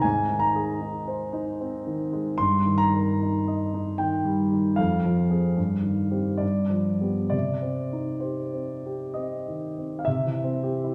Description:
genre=classical, romantic nocturne for solo piano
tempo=63-80 BPM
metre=3/4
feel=rubato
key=C minor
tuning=A4 = 440 Hz
part: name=warm concert grand piano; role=solo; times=0.0-10.9 s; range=F2 to C6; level=-26 LUFS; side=equal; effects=none
room=wet recital hall reverb, RT60 1.6 s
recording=heard from further back in the room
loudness=-26 LUFS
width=mono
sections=0.0-10.1 A section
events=none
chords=0.0 Ab; 2.4 Eb/G; 4.8 Fm; 5.6 Cm/G; 6.4 G7; 7.3 Cm; 10.1 C

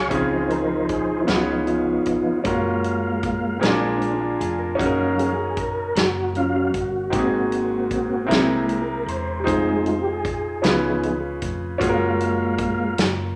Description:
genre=slow gospel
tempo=51 BPM (dotted quarters)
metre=6/8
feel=straight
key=Db major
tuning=A4 = 442 Hz
part: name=clear grand piano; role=accompaniment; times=0.0-13.4 s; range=Ab2 to Ab5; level=-26 LUFS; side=equal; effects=none
part: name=mellow tonewheel organ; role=sustained chords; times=0.0-12.9 s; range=F3 to F5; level=-26 LUFS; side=equal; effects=slow rotary speaker, chorus vibrato
part: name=hollow-body short-scale fingered electric bass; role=bass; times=0.0-13.4 s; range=E1 to Db2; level=-33 LUFS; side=equal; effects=none
part: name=natural country drum kit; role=drums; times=0.1-13.2 s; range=hi-hat, kick drum, snare drum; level=-28 LUFS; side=equal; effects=none
part: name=mellow electric guitar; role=second line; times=3.8-5.0 s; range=Bb3 to Bb4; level=-36 LUFS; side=equal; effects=none
room=moderate large studio reverb, RT60 1.1 s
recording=none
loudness=-22 LUFS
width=mono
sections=0.1-13.4 A section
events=tonewheel organ solo 0.1-13.4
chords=0.1 Dbmaj7; 1.3 Db7; 2.5 Gbmaj7; 3.6 Bb7; 4.8 Ebm7/Gb; 7.1 Ab7; 8.3 Caug7; 9.5 Fm7; 10.6 Db7; 11.8 Gbmaj7

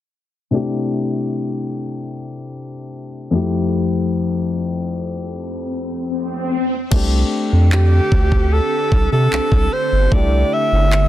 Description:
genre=contemporary R&B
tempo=75 BPM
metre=4/4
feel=straight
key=unclear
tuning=A4 = 435 Hz
part: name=dark grand piano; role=accompaniment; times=0.5-11.1 s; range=F2 to G4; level=-22 LUFS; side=left 3 dB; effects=none
part: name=swell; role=sound effects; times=5.4-6.9 s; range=none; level=-24 LUFS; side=left 2 dB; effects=none
part: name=glassy FM pad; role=sustained chords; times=7.4-11.1 s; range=D3 to A4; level=-26 LUFS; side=right 1 dB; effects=ensemble chorus, built-in reverb
part: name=saturated sub bass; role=bass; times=6.9-11.1 s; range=G1 to C3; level=-15 LUFS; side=equal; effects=none
part: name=smooth R&B drum kit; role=drums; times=6.9-11.1 s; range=crash cymbal, handclaps, kick drum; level=-18 LUFS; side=equal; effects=none
part: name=warm alto saxophone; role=melody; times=7.7-11.1 s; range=G4 to E5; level=-19 LUFS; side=right 1 dB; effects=none
room=little or no reverb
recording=dense, heavily limited modern master, low-pass filter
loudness=-16 LUFS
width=side -13 dB against mid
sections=0.5-6.9 A section; 6.9-11.1 B section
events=filter sweep 0.5-6.9; swell 5.4-6.9; hi-hats muted 6.9-11.1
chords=0.5 C6; 3.3 Fmaj9; 6.5 N.C.; 6.9 F69/C; 10.1 C69

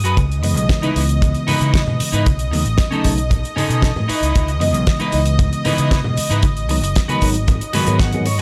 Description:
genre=nu-disco, nu disco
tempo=115 BPM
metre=4/4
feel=straight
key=C# minor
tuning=A4 = 441 Hz
part: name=lush unison pad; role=sustained chords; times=0.0-8.4 s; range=D#5 to D#6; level=-29 LUFS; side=equal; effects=chorus, sidechain pumping
part: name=clean electric guitar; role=riff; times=0.0-8.4 s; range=C#4 to F#5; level=-26 LUFS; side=equal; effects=lush chorus, dub echo
part: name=overdriven fingered electric bass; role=bass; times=0.0-8.4 s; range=F#1 to C#3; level=-22 LUFS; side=equal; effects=tube saturation
part: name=damped 70s drum kit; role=drums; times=0.0-8.4 s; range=hi-hat, snare drum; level=-28 LUFS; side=equal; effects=studio reverb
part: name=tube shaker and congas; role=percussion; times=0.0-8.4 s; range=none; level=-29 LUFS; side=equal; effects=none
part: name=kick drum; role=drums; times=0.2-8.1 s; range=none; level=-19 LUFS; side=equal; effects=studio reverb
part: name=mellow tine electric piano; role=accompaniment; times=0.4-8.3 s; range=C#3 to D#5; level=-24 LUFS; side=equal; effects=subtle chorus, sidechain pumping
room=little or no reverb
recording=none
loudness=-17 LUFS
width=mono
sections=0.0-8.4 A section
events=clean electric guitar fill 7.7-8.4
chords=0.2 C#m9; 2.3 B9; 4.1 C#m9; 6.4 G#m7

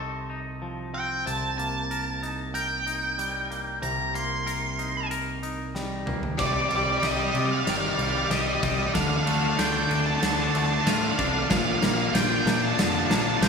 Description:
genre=post-rock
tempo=94 BPM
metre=4/4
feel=straight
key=C dorian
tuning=A4 = 440 Hz
part: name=twangy electric guitar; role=arpeggios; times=0.0-13.5 s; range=Bb2 to Bb4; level=-31 LUFS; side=left 3 dB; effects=none
part: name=growling picked electric bass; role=bass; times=0.0-13.5 s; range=F1 to C3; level=-31 LUFS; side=equal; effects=overdrive
part: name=octave-fuzz lead guitar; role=melody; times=0.9-13.5 s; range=D5 to C6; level=-28 LUFS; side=right 2 dB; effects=distortion
part: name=huge arena drum kit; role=drums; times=1.3-13.5 s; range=crash cymbal, hi-hat, kick drum, ride cymbal, snare drum, toms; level=-29 LUFS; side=equal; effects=none
part: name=overdriven semi-hollow guitar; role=riff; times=6.4-13.5 s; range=D4 to D5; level=-27 LUFS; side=equal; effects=none
room=moderate concert hall reverb, RT60 2.1 s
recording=recorded in a church or concert hall, studio reverb, faint mains hum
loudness=-23 LUFS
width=side -5 dB against mid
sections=0.0-6.4 A section; 6.4-13.5 B section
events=drum fill 5.8-6.4, 6.4-13.5; build-up 6.4-13.5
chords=0.0 F7/C; 1.3 Cm7; 6.4 Cmadd9; 8.9 Dm; 11.5 Bb

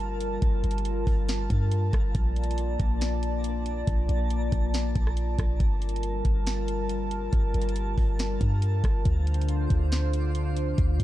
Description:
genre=hip hop, atmospheric cloud-rap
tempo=139 BPM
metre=4/4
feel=half-time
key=G minor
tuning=A4 = 440 Hz
part: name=dark analog pad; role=sustained chords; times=0.0-11.0 s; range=D3 to A5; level=-32 LUFS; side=left 1 dB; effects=chorus, sidechain pumping
part: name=clean 808-style bass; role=bass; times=0.0-11.0 s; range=G1 to G2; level=-26 LUFS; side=equal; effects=none
part: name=twinkling granular texture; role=texture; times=0.0-11.0 s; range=D4 to C6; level=-44 LUFS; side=right 1 dB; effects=built-in reverb
part: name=smooth R&B drum kit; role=drums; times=0.2-11.0 s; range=hi-hat, kick drum, rim click, snare drum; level=-27 LUFS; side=equal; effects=none
room=little or no reverb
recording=dark, warm production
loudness=-24 LUFS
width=side -14 dB against mid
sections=0.0-11.0 A section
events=none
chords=0.0 Gm9; 2.1 Bbmaj7; 5.6 Gm9; 9.1 Dm7

